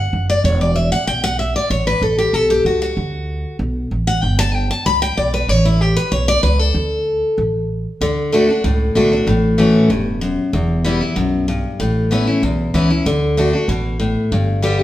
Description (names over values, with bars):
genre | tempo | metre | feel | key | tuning
bluegrass | 190 BPM | 4/4 | straight | D major | A4 = 440 Hz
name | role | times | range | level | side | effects
picked steel-string acoustic guitar | accompaniment | 0.0-14.8 s | E2 to B5 | -16 LUFS | left 1 dB | none
upright bass | bass | 0.0-14.8 s | E1 to D2 | -19 LUFS | right 1 dB | none
room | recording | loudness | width
moderate large studio reverb, RT60 1.2 s | band playing live in one room | -14 LUFS | side -13 dB against mid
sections
0.0-8.0 A section; 8.0-14.8 B section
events
steel-string acoustic guitar solo 0.0-8.0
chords
0.4 E5; 1.7 Aadd9; 3.0 D; 4.2 G; 5.5 A; 6.8 D5; 8.0 D; 9.3 A6; 10.5 Em; 11.8 Aadd9; 13.1 D; 14.3 G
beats
0.13 | 0.45 0.76 1.08 1.39 | 1.71 2.02 2.34 2.65 | 2.97 3.28 3.60 3.92 | 4.23 4.54 4.86 5.17 | 5.49 5.81 6.12 6.44 | 6.75 7.07 7.38 7.70 | 8.01 8.33 8.64 8.96 | 9.27 9.59 9.90 10.22 | 10.54 10.85 11.17 11.48 | 11.80 12.11 12.43 12.74 | 13.06 13.38 13.69 14.01 | 14.32 14.64